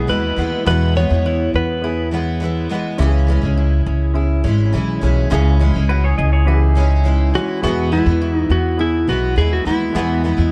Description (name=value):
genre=acoustic pop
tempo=104 BPM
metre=4/4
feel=straight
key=E major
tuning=A4 = 440 Hz
part: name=clean lap steel guitar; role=melody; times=0.0-2.1, 7.4-10.5 s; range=E4 to C#5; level=-23 LUFS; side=equal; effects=plate reverb, delay
part: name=felt-muted upright piano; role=accompaniment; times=0.0-10.5 s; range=E3 to G#4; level=-31 LUFS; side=equal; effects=none
part: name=picked steel-string acoustic guitar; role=accompaniment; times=0.0-10.5 s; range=E2 to E4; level=-25 LUFS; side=equal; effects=double-tracked
part: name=fingerpicked steel-string acoustic guitar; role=arpeggios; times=0.0-10.5 s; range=B3 to E4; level=-29 LUFS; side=equal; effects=plate reverb
part: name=upright bass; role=bass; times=0.0-10.5 s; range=G#1 to E2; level=-19 LUFS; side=equal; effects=none
part: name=pedal steel guitar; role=second line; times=5.9-7.4 s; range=D#4 to D#5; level=-27 LUFS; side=equal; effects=none
room=light reverb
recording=dark, warm production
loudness=-17 LUFS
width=mono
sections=0.0-10.5 A section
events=none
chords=0.0 E; 3.0 C#m; 7.6 E